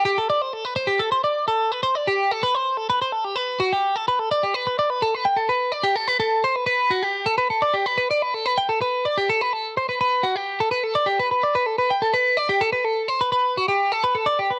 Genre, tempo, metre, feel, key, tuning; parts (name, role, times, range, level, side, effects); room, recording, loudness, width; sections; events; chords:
rock; 253 BPM (eighths); 7/8; straight; G major; A4 = 444 Hz
twelve-string electric guitar; solo; 0.0-14.6 s; F#4 to G5; -22 LUFS; equal; cassette tape
moderate spring reverb, RT60 1.1 s; home recording on cassette; -22 LUFS; mono
0.0-3.4 A section; 3.4-14.6 B section